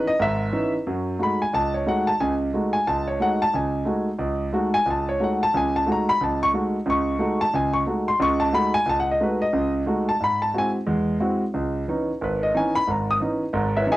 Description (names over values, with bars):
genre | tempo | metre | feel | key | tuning
jazz | 180 BPM | 4/4 | swing 62% on 8ths | F# dorian | A4 = 440 Hz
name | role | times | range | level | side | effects
warm concert grand piano | solo | 0.0-14.0 s | G#1 to D#6 | -20 LUFS | equal | none
room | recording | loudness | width
moderate small room reverb, RT60 0.5 s | home recording on cassette | -20 LUFS | side -16 dB against mid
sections
0.9-11.5 A section; 11.5-14.0 A section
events
none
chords
0.0 C#m9; 0.9 F#m69; 10.2 G#aug7; 11.5 C#m9